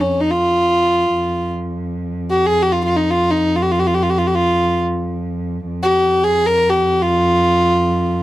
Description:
Arabic maqam ensemble; free time; F maqam bayati; A4 = 441 Hz
rich violin; melody; 0.0-8.2 s; Db4 to Bb4; -15 LUFS; equal
rich cello; drone; 0.0-8.2 s; F2; -21 LUFS; right 1 dB; stereo widening
studio reverb; dry, close 1970s-style studio recording; -14 LUFS; side -15 dB against mid
0.0-8.2 A section

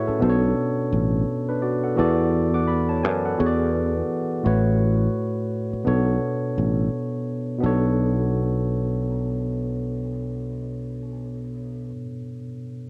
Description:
R&B, neo-soul; 85 BPM; 4/4; swing 61% on 16ths; B dorian; A4 = 441 Hz
barky tine electric piano; accompaniment; 0.0-12.9 s; A2 to D6; -26 LUFS; equal; cassette tape
sustaining fretless electric bass; bass; 0.1-11.9 s; A1 to F#2; -26 LUFS; equal
light reverb; home recording on cassette; -24 LUFS; mono
0.0-7.6 A section; 7.6-10.4 B section
0.2 Bm9; 2.0 E9sus4; 4.4 A6; 5.8 Bm9

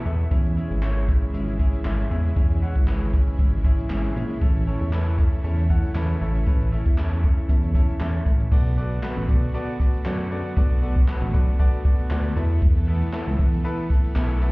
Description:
dance-pop; 117 BPM; 4/4; straight; A4 = 439 Hz
bright grand piano; accompaniment; 0.0-14.5 s; B3 to A5; -32 LUFS; left 1 dB; sidechain pumping
supersaw pad; sustained chords; 0.0-14.5 s; B2 to A4; -33 LUFS; right 1 dB; sidechain pumping
chorused synth bass; bass; 0.1-14.5 s; G#1 to F#2; -23 LUFS; equal; sidechain pumping
jazz brush drum kit; drums; 0.1-14.5 s; crash cymbal, handclaps, hi-hat, kick drum, snare drum; -21 LUFS; equal
studio reverb; heard muffled through a wall, club reverb, EQ, nothing above 10.5 kHz; -19 LUFS; side -24 dB against mid
0.0-8.5 A section; 8.5-14.5 B section
break 0.0-0.3; grand piano fill 0.0-0.3, 3.4-4.4, 7.5-8.5
0.3 C#m; 4.4 A; 8.5 Bm7; 12.4 Esus4

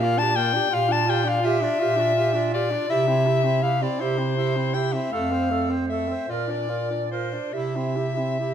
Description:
classical, lyrical piece for single-reed quartet; 47-56 BPM (dotted quarters); 6/8; rubato; A4 = 441 Hz
warm soprano saxophone; melody; 0.0-8.5 s; C5 to A5; -24 LUFS; left 4 dB
warm clarinet; second line; 0.0-8.5 s; E4 to D5; -30 LUFS; right 8 dB
warm tenor saxophone; accompaniment; 0.0-8.5 s; A3 to F4; -30 LUFS; equal
mellow bass clarinet; bass; 0.0-8.5 s; F2 to C3; -26 LUFS; right 3 dB
wet stone room reverb, RT60 1.3 s; -21 LUFS; side -9 dB against mid
0.0-8.5 A section
0.0 Bb6; 2.9 C; 5.1 F; 6.3 Bb; 7.5 C

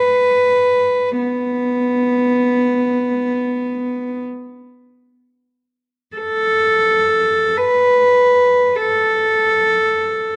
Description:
caucasian folk, Caucasian lament; free time; A4 = 440 Hz
warm cello; solo; 0.0-10.4 s; B3 to B4; -16 LUFS; equal
moderate scoring stage reverb, RT60 1.5 s; dark, warm production, lossy compression artefacts; -16 LUFS; mono
0.0-5.7 A section; 5.7-10.4 A section

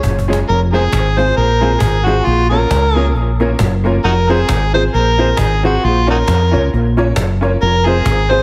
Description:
ska; 135 BPM; 4/4; swing 57% on 8ths; A4 = 440 Hz
overdriven harmonica; melody; 0.0-8.4 s; Eb4 to C5; -19 LUFS; equal; dub echo, plate reverb
mellow electric guitar; accompaniment; 0.0-8.4 s; F4 to Db5; -24 LUFS; equal; analog chorus, dub echo
honky-tonk upright piano; stabs; 0.0-8.4 s; Ab3 to Db5; -23 LUFS; equal
fingered electric bass; bass; 0.0-8.4 s; F1 to F2; -17 LUFS; equal
cajon; drums; 0.0-8.4 s; -22 LUFS; equal
light reverb; heavily compressed radio sound; -14 LUFS; mono
0.5-8.4 A section
drum fill 0.0-0.5
0.5 Fm; 2.3 Bbm; 4.0 Fm; 5.8 Bbm; 7.6 Fm

